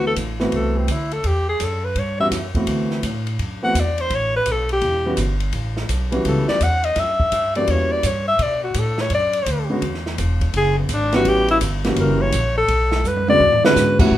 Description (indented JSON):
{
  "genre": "jazz, small-group swing and bop",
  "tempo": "168 BPM",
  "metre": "4/4",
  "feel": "swing 65% on 8ths",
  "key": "A mixolydian",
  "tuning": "A4 = 441 Hz",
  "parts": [
    { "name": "breathy alto saxophone", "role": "melody", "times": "0.0-14.2 s", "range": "B3 to F#5", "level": "-19 LUFS", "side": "left 1 dB", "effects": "none" },
    { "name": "dark concert grand piano", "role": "accompaniment", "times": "0.0-14.1 s", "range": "A2 to F#4", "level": "-21 LUFS", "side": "right 1 dB", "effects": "none" },
    { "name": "upright bass", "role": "bass", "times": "0.0-14.2 s", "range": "E1 to B2", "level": "-22 LUFS", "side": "equal", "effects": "none" },
    { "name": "open jazz drum kit", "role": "drums", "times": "0.2-14.2 s", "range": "crash cymbal, hi-hat, kick drum, ride cymbal, snare drum, toms", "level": "-26 LUFS", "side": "equal", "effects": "none" }
  ],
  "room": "light reverb",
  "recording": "minimal, uncompressed stereo recording",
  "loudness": "-17 LUFS",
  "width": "side -13 dB against mid",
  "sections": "0.0-14.1 A section",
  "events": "alto saxophone solo 0.0-14.1; drum fill 13.0-13.8",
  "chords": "0.0 D13; 1.2 A7sus2 (rootless); 2.7 D13; 4.1 A13; 7.0 F#7b9; 8.4 Bm7; 9.8 Eadd9; 11.3 A13; 12.0 F#7b9; 12.7 Bm7; 13.4 E13"
}